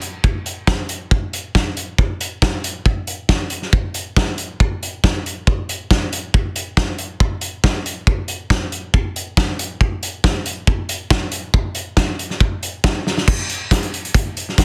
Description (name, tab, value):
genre	rock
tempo	138 BPM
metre	4/4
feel	straight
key	none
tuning	none
part	loose indie drum kit	drums	0.0-14.6 s	crash cymbal, hi-hat, kick drum, snare drum	-19 LUFS	equal	none
room	light reverb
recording	dense, heavily limited modern master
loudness	-20 LUFS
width	mono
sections	0.0-13.3 A section; 13.3-14.6 B section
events	drum fill 13.1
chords	none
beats	0.23 0.67 | 1.10 1.54 1.98 2.41 | 2.85 3.28 3.71 4.15 | 4.58 5.02 5.45 5.89 | 6.32 6.76 7.19 7.63 | 8.06 8.50 8.93 9.36 | 9.80 10.23 10.67 11.10 | 11.54 11.97 12.40 12.84 | 13.27 13.70 14.13 14.57